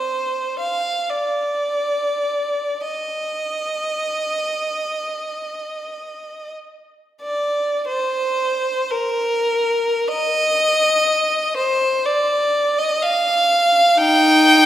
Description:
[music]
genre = classical, free, expressive piece for unaccompanied violin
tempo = free time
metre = none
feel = none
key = Eb major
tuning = A4 = 440 Hz
[part]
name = clear violin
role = solo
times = 0.0-14.7 s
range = Eb4 to G5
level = -17 LUFS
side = equal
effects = none
[sound]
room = wet concert hall reverb, RT60 1.8 s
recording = heard from further back in the room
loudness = -17 LUFS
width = side -12 dB against mid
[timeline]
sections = 0.0-7.9 A section; 7.9-14.7 A section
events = none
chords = none

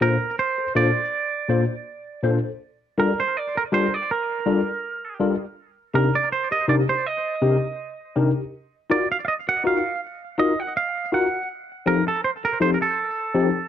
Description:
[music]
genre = reggae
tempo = 81 BPM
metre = 4/4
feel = swing 54% on 16ths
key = Bb major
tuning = A4 = 442 Hz
[part]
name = twangy electric guitar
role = melody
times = 0.0-13.7 s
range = A4 to Gb5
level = -23 LUFS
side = right 4 dB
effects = tape echo
[part]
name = mellow tine electric piano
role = accompaniment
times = 0.0-13.5 s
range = Bb2 to C5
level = -21 LUFS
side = left 3 dB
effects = overdrive, ensemble chorus, slapback echo
[sound]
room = light reverb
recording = dry, close 1970s-style studio recording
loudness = -20 LUFS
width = side -10 dB against mid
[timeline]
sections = 0.0-13.7 A section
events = none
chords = 0.0 Bbmaj7; 2.6 Gm7; 5.6 Cm7; 8.5 Ebmadd9; 11.5 F7

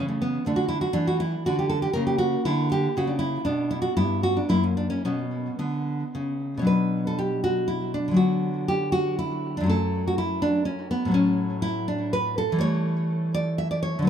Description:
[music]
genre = classical, baroque-style dance for nylon-string guitar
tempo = 108-126 BPM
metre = 3/4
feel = rubato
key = B minor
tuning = A4 = 440 Hz
[part]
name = nylon-string guitar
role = solo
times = 0.0-14.1 s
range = F#2 to E5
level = -22 LUFS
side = equal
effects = tape echo
[sound]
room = moderate studio reverb, RT60 0.6 s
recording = none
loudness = -22 LUFS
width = side -8 dB against mid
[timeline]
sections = 0.0-6.7 A section; 6.7-14.1 B section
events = none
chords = 0.5 D5; 2.0 F#7b9b13/C#; 3.5 N.C.; 4.0 Em/G; 4.5 F#; 5.0 Bm; 8.2 Bm/D; 9.7 F#m; 11.2 F#m/A; 12.6 A7/E

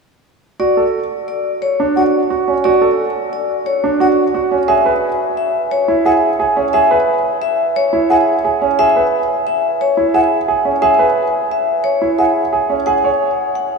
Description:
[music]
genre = classical, minimalist pattern music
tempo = 176 BPM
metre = 6/4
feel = straight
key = unclear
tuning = A4 = 442 Hz
[part]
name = vibraphone with medium hard mallets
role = melody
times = 0.6-13.8 s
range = C#5 to F#5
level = -17 LUFS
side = left 5 dB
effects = none
[part]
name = clear grand piano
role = arpeggios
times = 0.6-13.3 s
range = C#4 to C#5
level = -15 LUFS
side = right 4 dB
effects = none
[part]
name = mellow hollow concert flute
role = arpeggios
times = 2.0-12.3 s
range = F#5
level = -24 LUFS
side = equal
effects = none
[sound]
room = wet cathedral reverb, RT60 5.0 s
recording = in a vast, echoing space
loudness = -13 LUFS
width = side -4 dB against mid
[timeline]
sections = 0.6-13.8 A section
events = none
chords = 0.6 D; 4.7 C#m; 12.9 C#5

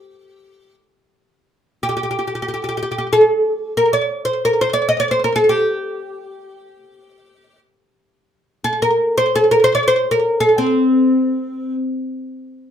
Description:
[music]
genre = Turkish makam ensemble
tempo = free time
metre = none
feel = none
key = unclear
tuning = A4 = 437 Hz
[part]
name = oud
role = solo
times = 0.0-11.7 s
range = C4 to Eb5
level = -15 LUFS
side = equal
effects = slapback echo
[sound]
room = moderate small room reverb, RT60 0.6 s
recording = none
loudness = -15 LUFS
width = side -9 dB against mid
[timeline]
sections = 0.0-12.7 A section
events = none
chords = none

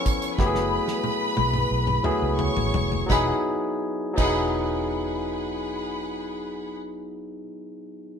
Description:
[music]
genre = lush 1970s-style soul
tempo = 83-94 BPM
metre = 4/4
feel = straight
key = E major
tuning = A4 = 439 Hz
[part]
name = warm studio violin section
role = second line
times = 0.0-6.7 s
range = G#4 to C#6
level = -29 LUFS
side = left 2 dB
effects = none
[part]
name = barky tine electric piano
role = accompaniment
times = 0.0-8.2 s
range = E#3 to A4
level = -26 LUFS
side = left 1 dB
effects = none
[part]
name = damped 70s drum kit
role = drums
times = 0.1-4.4 s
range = crash cymbal, hi-hat, kick drum, snare drum, toms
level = -27 LUFS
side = right 1 dB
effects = none
[part]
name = vintage muted fingered electric bass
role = bass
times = 0.4-7.4 s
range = E1 to C#2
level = -29 LUFS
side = equal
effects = none
[part]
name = glockenspiel with rubber mallets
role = texture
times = 3.1-7.1 s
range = G#6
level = -47 LUFS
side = equal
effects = none
[sound]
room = moderate stone room reverb, RT60 1.1 s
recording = band playing live in one room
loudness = -22 LUFS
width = side -7 dB against mid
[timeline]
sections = 0.0-3.1 A section; 3.1-6.0 B section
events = slowing down 0.0-3.1; drum fill 0.4-3.1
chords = 0.4 F#m11; 3.1 Emaj9

